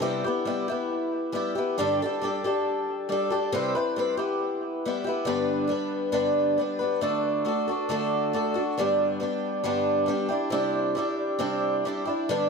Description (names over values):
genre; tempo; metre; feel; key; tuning
rock; 137 BPM; 4/4; straight; G major; A4 = 441 Hz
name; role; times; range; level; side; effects
picked twelve-string acoustic guitar; solo; 0.0-12.5 s; G2 to B4; -24 LUFS; equal; analog delay
room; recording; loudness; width
light reverb; echo-heavy mix; -24 LUFS; side -4 dB against mid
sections
0.0-5.3 A section; 5.3-12.5 B section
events
none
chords
0.0 Cmaj7; 0.7 Em; 1.8 Gsus2; 3.5 Cmaj7; 4.2 Em; 5.3 G; 7.0 D; 8.8 G; 10.3 Cadd9